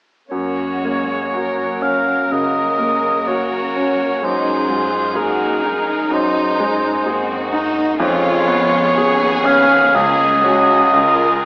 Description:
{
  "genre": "classical, romantic movement for piano and orchestra",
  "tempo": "57-65 BPM",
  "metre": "4/4",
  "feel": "rubato",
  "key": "F# major",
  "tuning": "A4 = 439 Hz",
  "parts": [
    { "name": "clear concert grand piano", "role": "melody", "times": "0.3-11.5 s", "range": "C#2 to G#4", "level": "-19 LUFS", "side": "equal", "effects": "none" },
    { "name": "warm studio violin section", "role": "melody", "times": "0.3-11.5 s", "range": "D#4 to A#4", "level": "-27 LUFS", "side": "equal", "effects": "none" },
    { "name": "warm cor anglais", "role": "second line", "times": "0.3-11.5 s", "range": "A#4 to E#5", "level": "-16 LUFS", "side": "equal", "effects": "none" },
    { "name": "warm studio viola section", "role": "accompaniment", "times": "0.3-11.5 s", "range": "F#3 to E#4", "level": "-24 LUFS", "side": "equal", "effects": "none" },
    { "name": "warm studio cello section", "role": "bass", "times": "0.3-11.5 s", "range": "C#2 to F#2", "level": "-30 LUFS", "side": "equal", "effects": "none" },
    { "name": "rich studio violin section", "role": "second line", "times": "2.3-11.5 s", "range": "B#3 to A#4", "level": "-24 LUFS", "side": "equal", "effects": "none" }
  ],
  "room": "wet recital hall reverb, RT60 1.6 s",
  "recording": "AM radio sound",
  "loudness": "-13 LUFS",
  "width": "side -32 dB against mid",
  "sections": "0.3-11.5 A section",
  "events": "none",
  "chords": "0.3 F#; 4.2 G#7/F#; 8.0 C#7/E#; 9.9 F#/C#; 10.9 C#"
}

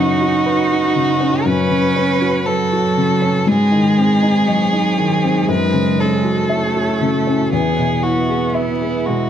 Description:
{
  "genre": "neoclassical piano and strings",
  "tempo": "59 BPM",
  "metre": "4/4",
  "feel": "rubato",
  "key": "unclear",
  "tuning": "A4 = 437 Hz",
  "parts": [
    { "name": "rich violin", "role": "melody", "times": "0.0-9.3 s", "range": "E4 to B4", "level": "-20 LUFS", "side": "left 2 dB", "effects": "slapback echo" },
    { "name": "rich cello", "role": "second line", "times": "0.0-9.3 s", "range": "F#3 to D#4", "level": "-19 LUFS", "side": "right 6 dB", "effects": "none" },
    { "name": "felt-muted upright piano", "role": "accompaniment", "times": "0.0-9.3 s", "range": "E2 to E5", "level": "-18 LUFS", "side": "left 3 dB", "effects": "none" },
    { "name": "deep dark ambient pad", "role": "sustained chords", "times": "0.0-9.3 s", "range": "C#4 to C#5", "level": "-27 LUFS", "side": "right 3 dB", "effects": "chorus, built-in reverb" }
  ],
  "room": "moderate recital hall reverb, RT60 1.6 s",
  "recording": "close, detailed microphones",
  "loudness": "-14 LUFS",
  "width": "side -9 dB against mid",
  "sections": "0.0-9.3 A section",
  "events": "none",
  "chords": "0.0 Bsus2/F#; 3.5 G#; 5.5 F#m7; 7.5 E"
}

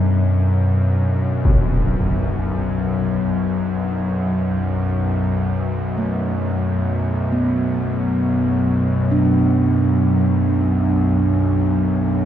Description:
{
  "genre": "dark ambient drone",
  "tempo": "free time",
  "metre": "none",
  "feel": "none",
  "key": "B minor",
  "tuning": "A4 = 441 Hz",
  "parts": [
    { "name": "bowed-like drone", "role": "drone", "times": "0.0-12.3 s", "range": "B1 to F#2", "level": "-18 LUFS", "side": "left 1 dB", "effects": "built-in reverb" },
    { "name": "impact", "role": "percussion", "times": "1.4-1.6 s", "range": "none", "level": "-22 LUFS", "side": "equal", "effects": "low-pass filter on sfx" },
    { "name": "bronze singing bowl", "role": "arpeggios", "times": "6.0-12.3 s", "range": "A3 to D4", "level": "-24 LUFS", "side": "right 3 dB", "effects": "diffuse ambient delay" }
  ],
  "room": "wet cathedral reverb, RT60 4.8 s",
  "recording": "none",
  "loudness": "-16 LUFS",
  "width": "side -10 dB against mid",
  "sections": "0.0-12.3 A section",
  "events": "none",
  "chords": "0.0 Bm"
}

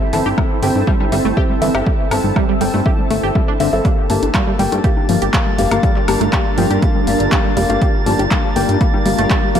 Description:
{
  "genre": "progressive house",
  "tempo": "121 BPM",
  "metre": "4/4",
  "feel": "straight",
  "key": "G dorian",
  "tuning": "A4 = 438 Hz",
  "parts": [
    { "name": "shimmering ambient pad", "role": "sustained chords", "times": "0.0-9.6 s", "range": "G3 to Bb4", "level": "-22 LUFS", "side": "right 1 dB", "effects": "chorus, built-in reverb, sidechain pumping" },
    { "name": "felt-muted upright piano", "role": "stabs", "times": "0.0-9.6 s", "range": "Bb3 to A5", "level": "-20 LUFS", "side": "left 4 dB", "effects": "sidechain pumping, dub echo" },
    { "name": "tight sequenced synth", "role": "arpeggios", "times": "0.1-9.6 s", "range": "G2 to G4", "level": "-22 LUFS", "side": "right 1 dB", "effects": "chorus, sidechain pumping, dub echo" },
    { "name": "fat analog bass", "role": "bass", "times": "0.1-9.6 s", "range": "F1 to G2", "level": "-20 LUFS", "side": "equal", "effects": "sidechain pumping" },
    { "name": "deep house drum kit", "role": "drums", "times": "0.1-9.6 s", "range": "handclaps, hi-hat, woodblock", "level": "-24 LUFS", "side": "equal", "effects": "overdrive, small room ambience" },
    { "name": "congas", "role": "percussion", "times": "0.3-9.5 s", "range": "none", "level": "-27 LUFS", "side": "left 3 dB", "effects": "overdrive, sidechain pumping on perc, small room ambience" },
    { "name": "electronic kick drum", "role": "drums", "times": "0.4-9.4 s", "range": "none", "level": "-17 LUFS", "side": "equal", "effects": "overdrive, small room ambience" },
    { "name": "drifting glass-harmonics texture", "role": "texture", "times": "4.6-9.6 s", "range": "A6", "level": "-28 LUFS", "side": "right 2 dB", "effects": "chorus, built-in reverb, sidechain pumping" }
  ],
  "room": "light reverb, digital ambience",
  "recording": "none",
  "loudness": "-13 LUFS",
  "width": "side -8 dB against mid",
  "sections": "0.0-9.6 A section",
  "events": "none",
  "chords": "0.0 Am/G; 3.8 Gm7"
}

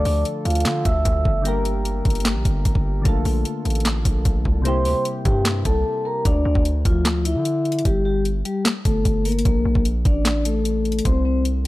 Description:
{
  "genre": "hip hop, trap",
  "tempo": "150 BPM",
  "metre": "4/4",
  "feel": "half-time",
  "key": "D minor",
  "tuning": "A4 = 439 Hz",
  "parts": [
    { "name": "vibraphone with soft mallets", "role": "melody", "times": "0.0-1.4, 4.7-11.7 s", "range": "F3 to E6", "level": "-23 LUFS", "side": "left 1 dB", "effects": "low-pass filter" },
    { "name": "soft electric-piano-like synth keys", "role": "accompaniment", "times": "0.0-6.3 s", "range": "C3 to Bb4", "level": "-27 LUFS", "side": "left 2 dB", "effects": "chorus, low-pass filter" },
    { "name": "distorted 808-style bass", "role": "bass", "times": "0.0-11.7 s", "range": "G1 to D3", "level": "-22 LUFS", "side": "equal", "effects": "distortion" },
    { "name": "trap drum kit", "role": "drums", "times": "0.1-11.7 s", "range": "handclaps, hi-hat, kick drum, snare drum", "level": "-22 LUFS", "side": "equal", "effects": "none" }
  ],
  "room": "digital ambience",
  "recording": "none",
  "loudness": "-18 LUFS",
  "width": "side -18 dB against mid",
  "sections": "0.0-6.3 A section; 6.3-11.7 B section",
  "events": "break 5.9-6.3",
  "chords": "0.0 Dmadd9; 1.5 Gm; 3.1 Bbmaj7; 4.7 C7; 6.3 Dmadd9; 7.9 Gm; 9.5 Bbmaj7; 11.1 C5"
}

